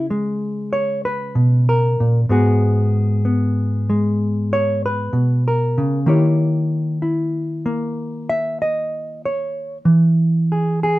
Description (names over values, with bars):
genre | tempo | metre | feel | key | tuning
solo jazz | 63 BPM | 4/4 | swing 69% on 8ths | G# minor | A4 = 440 Hz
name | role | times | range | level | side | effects
hollow-body jazz guitar | solo | 0.0-11.0 s | G#2 to E5 | -16 LUFS | equal | none
room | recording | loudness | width
light reverb | minimal, uncompressed stereo recording | -16 LUFS | side -17 dB against mid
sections
0.0-11.0 A section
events
hollow-body jazz guitar solo 0.0-11.0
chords
0.0 C#7(no3); 2.3 G#m7; 6.1 D#7b9; 9.9 E